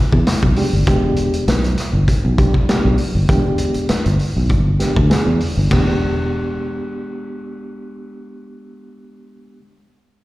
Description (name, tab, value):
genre	funk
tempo	99 BPM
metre	4/4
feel	straight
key	unclear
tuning	A4 = 439 Hz
part	fingered electric bass	bass	0.1-9.6 s	E1 to E2	-17 LUFS	equal	none
part	vintage drum kit	drums	0.1-5.9 s	hi-hat, kick drum, ride cymbal, snare drum	-19 LUFS	equal	none
part	mellow reed electric piano	stabs	0.6-9.6 s	G3 to G#4	-22 LUFS	right 1 dB	fast tremolo, slapback echo
room	studio ambience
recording	live gig heard through the venue's PA, recital hall reverb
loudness	-14 LUFS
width	side -18 dB against mid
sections	0.9-5.7 A section; 5.7-8.1 B section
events	none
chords	0.0 E7#9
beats	0.27 | 0.87 1.48 2.08 2.69 | 3.29 3.90 4.50 5.11 | 5.71 6.32 6.92 7.53